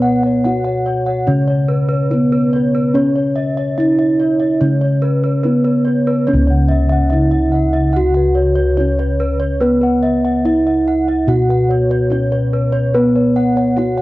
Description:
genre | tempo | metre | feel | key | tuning
Javanese gamelan | 72 BPM | 4/4 | straight | unclear | A4 = 442 Hz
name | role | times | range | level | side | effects
gamelan-type bronze metallophone | melody | 0.0-14.0 s | B3-25c to F#4 | -16 LUFS | right 1 dB | none
gamelan-type bossed gongs | arpeggios | 0.0-14.0 s | B4-25c to F#5 | -23 LUFS | left 5 dB | none
gamelan-type bronze metallophone | arpeggios | 0.0-14.0 s | B4-25c to F#5 | -24 LUFS | right 3 dB | none
gamelan-type bossed gongs | bass | 0.0-14.0 s | C#2 to B4-25c | -16 LUFS | equal | none
room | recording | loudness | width
little or no reverb | dry, close 1970s-style studio recording | -13 LUFS | side -18 dB against mid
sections
0.0-14.0 A section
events
none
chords
none

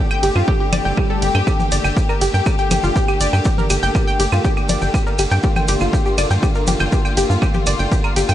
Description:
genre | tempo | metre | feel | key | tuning
melodic techno | 121 BPM | 4/4 | straight | G minor | A4 = 440 Hz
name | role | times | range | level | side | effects
rich studio string section | sustained chords | 0.0-8.3 s | D3 to G4 | -23 LUFS | left 2 dB | sidechain pumping
analog pluck | arpeggios | 0.0-8.3 s | F4 to G6 | -21 LUFS | equal | chorus, sidechain pumping, tape echo
punchy analog drum machine | drums | 0.1-8.3 s | claves, congas, hi-hat, ride cymbal | -25 LUFS | equal | none
tight sequencer bass | bass | 0.2-8.3 s | G1 to G2 | -19 LUFS | equal | sidechain pumping
electronic kick drum | drums | 0.5-8.0 s | none | -18 LUFS | equal | none
swell | sound effects | 0.7-1.5 s | none | -29 LUFS | left 3 dB | none
maracas | percussion | 1.5-8.3 s | none | -31 LUFS | right 2 dB | none
room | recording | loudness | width
digital ambience | nothing above 10.6 kHz | -15 LUFS | side -12 dB against mid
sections
0.0-8.3 A section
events
swell 0.7-1.5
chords
0.0 F6/G (rootless); 1.5 Gmadd9

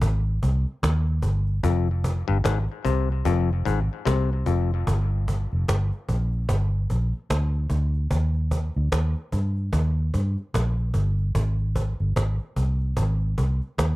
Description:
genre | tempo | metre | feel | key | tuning
dub reggae | 74 BPM | 4/4 | swing 59% on 16ths | G phrygian | A4 = 441 Hz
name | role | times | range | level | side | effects
vintage muted fingered electric bass | bass | 0.0-14.0 s | F1 to G2 | -22 LUFS | equal | none
cajon | drums | 0.0-14.0 s | none | -29 LUFS | equal | none
clav | riff | 1.6-4.7 s | F2 to C3 | -27 LUFS | left 9 dB | dub echo
room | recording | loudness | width
little or no reverb | dry, close 1970s-style studio recording | -22 LUFS | side -18 dB against mid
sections
0.0-4.9 A section; 4.9-14.0 B section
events
break 0.0-1.6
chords
0.0 Abmaj7; 1.6 Fm; 4.9 Gm; 8.1 Eb; 11.3 Ab

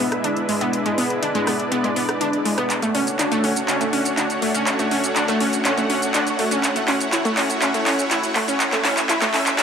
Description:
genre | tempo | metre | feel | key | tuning
progressive house | 122 BPM | 4/4 | straight | unclear | A4 = 441 Hz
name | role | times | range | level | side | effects
supersaw pad | sustained chords | 0.0-9.6 s | G#3 to F#5 | -24 LUFS | equal | low-pass filter
wide unison pluck | arpeggios | 0.0-9.6 s | G#3 to E4 | -22 LUFS | equal | tape echo
deep house drum kit | drums | 0.0-9.6 s | handclaps, hi-hat, rim click, shaker | -23 LUFS | equal | overdrive, high-pass filter on hats, small room ambience, high-pass filter on snare, high-pass filter on perc
room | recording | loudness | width
moderate huge ambient reverb, RT60 4.3 s | high-pass filter | -18 LUFS | side -7 dB against mid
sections
0.0-9.6 A section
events
build-up 0.0-9.6; filter sweep on supersaw synth 0.0-9.6; filter sweep 0.0-9.6; drum fill 2.7-9.6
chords
0.0 E7; 2.7 Dmaj7; 6.6 A6

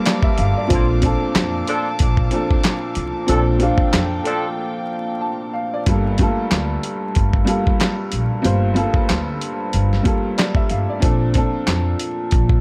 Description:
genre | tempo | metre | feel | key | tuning
hip hop, boom-bap hip-hop | 93 BPM | 4/4 | swing 55% on 16ths | G minor | A4 = 438 Hz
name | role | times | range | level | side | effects
clear upright piano | accompaniment | 0.0-12.6 s | G2 to A5 | -23 LUFS | equal | cassette tape, high-pass filter, low-pass filter
dark studio string section | sustained chords | 0.0-5.8 s | Bb3 to D6 | -32 LUFS | equal | high-pass filter, low-pass filter
dusty soul sampler-style drum kit | drums | 0.1-12.6 s | handclaps, hi-hat, kick drum, snare drum | -21 LUFS | equal | none
upright bass | bass | 0.4-12.6 s | G1 to F2 | -23 LUFS | equal | none
mellow horn section | stabs | 0.7-4.5 s | D3 to A4 | -28 LUFS | equal | high-pass filter, low-pass filter, tape echo
room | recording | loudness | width
little or no reverb | vinyl crackle | -19 LUFS | mono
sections
0.0-5.9 A section; 5.9-12.6 B section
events
break 4.6-5.9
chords
0.0 Gm7; 0.7 Bbmaj7; 5.9 Gm7; 11.0 Bbmaj7

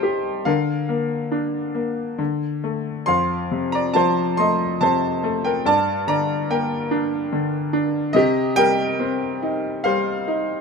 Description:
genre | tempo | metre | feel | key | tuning
classical, lyrical solo piano | 70 BPM | 3/4 | rubato | G minor | A4 = 444 Hz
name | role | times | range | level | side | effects
bright grand piano | solo | 0.0-10.6 s | F2 to C6 | -19 LUFS | left 1 dB | none
room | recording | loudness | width
light reverb | none | -19 LUFS | side -5 dB against mid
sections
0.0-10.6 A section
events
none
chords
0.5 Bb/D; 2.2 D5; 3.1 F; 5.7 Gm; 8.2 Cm

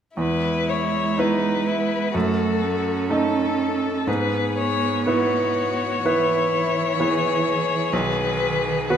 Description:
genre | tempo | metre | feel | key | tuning
classical, slow romantic movement for piano quartet | 58-65 BPM | 4/4 | rubato | E major | A4 = 440 Hz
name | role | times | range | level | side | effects
rich violin | melody | 0.2-9.0 s | A4 to C#5 | -24 LUFS | left 6 dB | none
rich violin | second line | 0.2-9.0 s | D#4 to A4 | -29 LUFS | left 3 dB | none
warm cello | second line | 0.2-9.0 s | D#3 to C#4 | -26 LUFS | right 6 dB | none
bright baby grand piano | accompaniment | 0.2-9.0 s | B1 to D#5 | -24 LUFS | right 2 dB | none
room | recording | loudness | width
wet recital hall reverb, RT60 1.6 s | none | -19 LUFS | side -8 dB against mid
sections
0.2-9.0 A section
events
none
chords
0.2 E; 2.1 D#dim/F#; 4.1 E/G#; 7.9 B

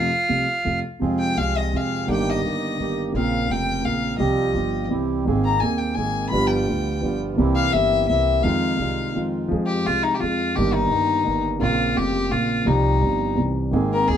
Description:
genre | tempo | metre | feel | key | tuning
tango | 170 BPM | 3/4 | rubato | F minor | A4 = 440 Hz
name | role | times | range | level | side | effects
bandoneon | melody | 0.0-0.8 s | F5 | -22 LUFS | right 2 dB | none
warm violin | second line | 0.0-14.2 s | Eb4 to B5 | -24 LUFS | left 5 dB | none
dark baby grand piano | accompaniment | 0.0-14.2 s | Eb1 to Ab4 | -22 LUFS | right 1 dB | none
upright bass | bass | 0.0-14.2 s | F1 to F2 | -27 LUFS | right 1 dB | none
bandoneon | stabs | 1.0-9.5, 13.7-14.2 s | G3 to Bb4 | -32 LUFS | right 5 dB | none
room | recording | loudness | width
light reverb | minimal, uncompressed stereo recording | -19 LUFS | side -9 dB against mid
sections
0.0-1.0 A section; 1.0-9.5 B section; 9.5-14.2 B section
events
violin solo 1.0-9.5, 9.5-14.2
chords
0.0 F; 1.0 Fm; 2.1 Eb/G; 3.1 Bbmadd9; 4.2 Csus4; 4.9 C; 5.3 Abadd9; 6.3 G7; 7.4 C7; 8.4 Fm7; 9.5 Fm; 10.6 Eb/G; 11.6 Bbmadd9; 12.7 Csus4; 13.4 C

